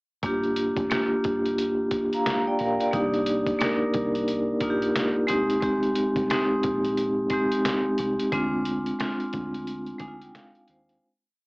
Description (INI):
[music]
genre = hip hop, boom-bap hip-hop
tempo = 89 BPM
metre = 4/4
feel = swing 61% on 16ths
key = unclear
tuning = A4 = 440 Hz
[part]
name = vibraphone with medium hard mallets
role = accompaniment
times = 0.2-11.0 s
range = Ab3 to Bb5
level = -23 LUFS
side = equal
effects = cassette tape, high-pass filter, low-pass filter
[part]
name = deep dub fingered electric bass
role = bass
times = 0.2-11.0 s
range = F1 to Eb2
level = -39 LUFS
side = equal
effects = none
[part]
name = trip hop sampler-style drum kit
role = drums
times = 0.2-11.0 s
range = hi-hat, kick drum, snare drum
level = -32 LUFS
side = equal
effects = cassette tape
[sound]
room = light reverb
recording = home recording on cassette, AM radio sound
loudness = -23 LUFS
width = side -37 dB against mid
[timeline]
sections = 0.2-11.0 verse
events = fade-out 8.3-11.0; vibraphone fill 9.7-11.0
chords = 0.2 Gm7; 2.9 Cm7; 5.3 Bb13sus4; 8.3 Dm7b5